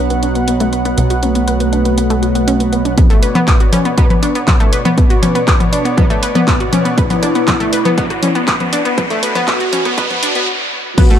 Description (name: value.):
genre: melodic techno.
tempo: 120 BPM.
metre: 4/4.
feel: straight.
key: B minor.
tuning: A4 = 440 Hz.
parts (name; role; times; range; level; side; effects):
expressive synth lead; melody; 0.0-11.2 s; A3 to B4; -21 LUFS; equal; analog chorus, digital delay.
lush unison pad; sustained chords; 0.0-11.2 s; B2 to F#5; -24 LUFS; equal; chorus, sidechain pumping.
analog pluck; arpeggios; 0.0-11.2 s; A3 to B4; -18 LUFS; left 1 dB; chorus, sidechain pumping, digital delay.
sync-sweep polysynth; stabs; 0.0-10.0 s; B2 to B3; -22 LUFS; right 5 dB; chorus, sidechain pumping, digital delay.
plucky analog bass; bass; 0.0-3.0 s; B1; -18 LUFS; equal; tube saturation, sidechain pumping.
techno drum kit; drums; 0.1-11.2 s; congas, crash cymbal, handclaps, hi-hat, rim click; -18 LUFS; left 2 dB; overdrive, small room reverb.
electronic kick drum; drums; 3.0-11.1 s; none; -12 LUFS; equal; small room reverb.
riser; sound effects; 6.3-10.5 s; none; -22 LUFS; equal; none.
room: light reverb, digital ambience.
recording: dark, warm production, high-pass filter.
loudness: -11 LUFS.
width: side -9 dB against mid.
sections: 0.0-3.0 A section; 3.0-11.0 B section.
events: filter sweep on analog synth pad 0.0-3.0; build-up 3.0-11.0; filter sweep on analog synth lead 3.0-11.0; filter sweep 3.0-11.0; riser 6.3-10.5; stop 10.5-11.0.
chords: 0.0 Bmadd9.